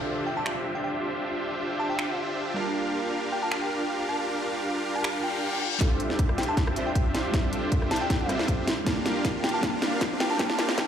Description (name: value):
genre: future bass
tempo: 157 BPM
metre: 4/4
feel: swing 53% on 16ths, half-time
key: D minor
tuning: A4 = 442 Hz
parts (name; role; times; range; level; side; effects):
- glassy digital keys; accompaniment; 0.0-10.9 s; D3 to A5; -35 LUFS; right 2 dB; chorus, sidechain pumping, digital delay
- supersaw chords; riff; 0.0-10.9 s; D4 to F5; -29 LUFS; right 1 dB; sidechain pumping, low-pass filter, digital delay
- downlifter, reverse cymbal and riser; sound effects; 0.0-10.9 s; none; -36 LUFS; left 3 dB; none
- bell-like FM electric piano; melody; 0.3-10.9 s; G5 to A5; -33 LUFS; left 1 dB; chorus, sidechain pumping, digital delay
- trap drum kit; drums; 0.5-10.9 s; finger snaps, hi-hat, rim click, snare drum; -29 LUFS; equal; none
- electronic kick drum; drums; 5.8-10.9 s; none; -27 LUFS; equal; none
room: moderate digital room reverb, RT60 1.1 s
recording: played on a big sound system in a bare room, large studio reverb, high-pass filter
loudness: -25 LUFS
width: side -8 dB against mid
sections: 0.0-5.8 A section; 5.8-10.9 B section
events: reverse cymbal 5.2-5.8; build-up 5.8-10.9; drum fill 5.8-10.9; filter sweep on supersaw synth 5.8-10.9; filter sweep 5.8-10.9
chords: 0.0 Dm11; 2.6 Gm7; 5.6 N.C.; 5.8 Dm11; 8.7 Gm7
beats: 0.08 0.46 0.84 | 1.22 1.60 1.99 2.37 | 2.75 3.13 3.52 3.90 | 4.28 4.66 5.04 5.43 | 5.81 6.19 6.57 6.96 | 7.34 7.72 8.10 8.48 | 8.87 9.25 9.63 10.01 | 10.39 10.78